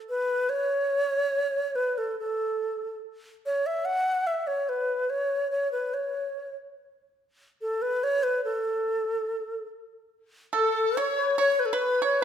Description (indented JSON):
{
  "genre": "chinese traditional, Chinese chamber ensemble",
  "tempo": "72 BPM",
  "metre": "2/4",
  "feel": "straight",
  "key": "unclear",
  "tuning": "A4 = 441 Hz",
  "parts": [
    { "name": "bright reedy low xiao", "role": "melody", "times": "0.1-12.2 s", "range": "A4 to F#5", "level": "-26 LUFS", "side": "equal", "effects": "none" },
    { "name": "mellow hollow large dizi", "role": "second line", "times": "10.5-12.2 s", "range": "A4 to C#5", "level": "-28 LUFS", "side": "left 5 dB", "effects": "none" },
    { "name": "pipa", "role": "second line", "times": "10.5-12.2 s", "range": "A4 to C#5", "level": "-27 LUFS", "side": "right 5 dB", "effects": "none" }
  ],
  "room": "wet recital hall reverb, RT60 1.6 s",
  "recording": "none",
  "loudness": "-25 LUFS",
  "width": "side -9 dB against mid",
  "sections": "0.0-10.1 A section; 10.1-12.2 B section",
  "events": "none",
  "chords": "none"
}